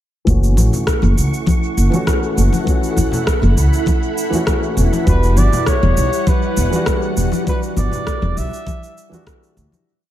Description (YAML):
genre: sunset chillout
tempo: 100 BPM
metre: 4/4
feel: straight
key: E dorian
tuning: A4 = 440 Hz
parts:
  - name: dark baby grand piano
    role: accompaniment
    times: 0.2-9.9 s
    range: E3 to F#4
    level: -24 LUFS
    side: moving between left 5 dB and right 5 dB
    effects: auto-pan, low-pass filter, tape echo
  - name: soft string machine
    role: sustained chords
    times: 0.7-9.8 s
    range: G3 to C#6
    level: -24 LUFS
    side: right 1 dB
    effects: ensemble chorus
  - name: upright bass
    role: bass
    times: 0.3-9.7 s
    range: E1 to D2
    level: -14 LUFS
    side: equal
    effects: none
  - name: electronic cabasa and rim click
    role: drums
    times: 0.3-9.8 s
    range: none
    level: -24 LUFS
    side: equal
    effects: overdrive
  - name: electronic kick drum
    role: drums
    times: 0.3-9.4 s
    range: none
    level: -19 LUFS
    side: equal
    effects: none
  - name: congas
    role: percussion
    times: 0.6-9.8 s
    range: none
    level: -24 LUFS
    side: left 3 dB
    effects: tape echo
  - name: trumpet with bucket mute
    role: melody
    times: 5.1-9.3 s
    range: B4 to E5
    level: -23 LUFS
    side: equal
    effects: tape echo
room: light reverb, small room ambience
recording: echo-heavy mix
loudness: -14 LUFS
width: side -12 dB against mid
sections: 0.3-9.9 groove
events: filter sweep on grand piano 0.3-9.9; fade-out 6.7-9.9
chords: 0.3 F#m7; 5.1 Em9